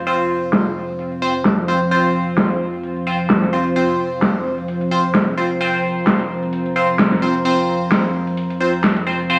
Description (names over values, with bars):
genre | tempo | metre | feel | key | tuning
bass house | 130 BPM | 4/4 | swing 56% on 16ths | unclear | A4 = 440 Hz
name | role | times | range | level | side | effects
deep dark ambient pad | sustained chords | 0.0-9.4 s | F3 to Bb5 | -24 LUFS | equal | chorus, built-in reverb
band-passed chord stab | stabs | 0.1-9.4 s | C4 to C5 | -22 LUFS | equal | phaser, dub echo
big-room dance drum kit | drums | 0.1-9.4 s | hi-hat, snare drum | -20 LUFS | equal | low-pass filter on hats, low-pass filter on snare, low-pass filter on perc, low-pass filter on room
room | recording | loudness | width
moderate digital room reverb, RT60 1.2 s, digital ambience | studio reverb | -18 LUFS | mono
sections
0.0-9.4 A section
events
none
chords
0.0 F5